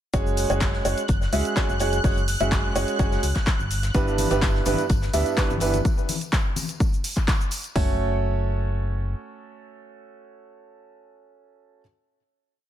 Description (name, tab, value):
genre	piano house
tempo	126 BPM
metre	4/4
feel	straight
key	F# minor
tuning	A4 = 440 Hz
part	analog string pad	sustained chords	0.1-5.9 s	F#6	-33 LUFS	right 1 dB	ensemble chorus, sidechain pumping
part	bright upright piano	riff	0.1-11.8 s	G2 to E5	-26 LUFS	right 3 dB	sidechain pumping, ping-pong delay
part	organ-like FM bass	bass	0.1-9.1 s	F#1 to D2	-26 LUFS	equal	sidechain pumping
part	house drum kit	drums	0.1-7.9 s	hi-hat, kick drum	-23 LUFS	equal	overdrive
part	house drum kit	drums	0.1-7.7 s	cabasa, handclaps, hi-hat	-30 LUFS	equal	overdrive
part	modern studio drum kit	drums	0.1-5.7 s	hi-hat, snare drum	-40 LUFS	left 4 dB	sidechain pumping on hats, high-pass filter on hats, high-pass filter on snare, high-pass filter on room
part	tambourine and congas	percussion	3.9-7.7 s	none	-34 LUFS	left 6 dB	none
room	small room ambience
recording	none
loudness	-21 LUFS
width	side -11 dB against mid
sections	0.1-7.8 groove; 7.8-11.6 final chord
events	none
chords	0.1 F#sus2; 3.7 G6; 5.9 N.C.; 7.8 F#m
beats	| 0.14 0.61 1.09 1.56 | 2.04 2.52 2.99 3.47 | 3.95 4.42 4.90 5.37 | 5.85 6.33 6.80 7.28 | 7.75 8.23 8.71 9.18 | 9.66 10.14 10.61 11.09